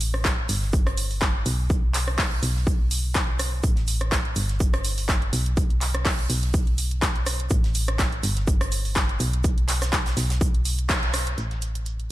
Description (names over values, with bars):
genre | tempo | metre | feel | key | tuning
piano house | 124 BPM | 4/4 | swing 55% on 16ths | unclear | A4 = 442 Hz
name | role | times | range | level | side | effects
solid FM bass | bass | 0.0-12.1 s | G1 to B1 | -25 LUFS | equal | sidechain pumping
house drum kit | drums | 0.0-12.1 s | handclaps, hi-hat, rim click | -27 LUFS | equal | overdrive
modern studio drum kit | drums | 0.0-12.0 s | hi-hat, shaker, snare drum | -36 LUFS | right 4 dB | high-pass filter on hats, low-pass filter on hats, high-pass filter on snare, low-pass filter on snare, high-pass filter on perc, low-pass filter on perc, high-pass filter on room, low-pass filter on room
electronic kick drum | drums | 0.2-11.0 s | none | -23 LUFS | equal | overdrive
room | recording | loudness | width
little or no reverb | lossy compression artefacts | -21 LUFS | side -16 dB against mid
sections
0.0-11.4 A section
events
band accent 10.9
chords
none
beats
0.25 0.73 1.22 | 1.70 2.19 2.67 3.15 | 3.64 4.12 4.60 5.09 | 5.57 6.06 6.54 7.02 | 7.51 7.99 8.47 8.96 | 9.44 9.93 10.41 10.89 | 11.38 11.86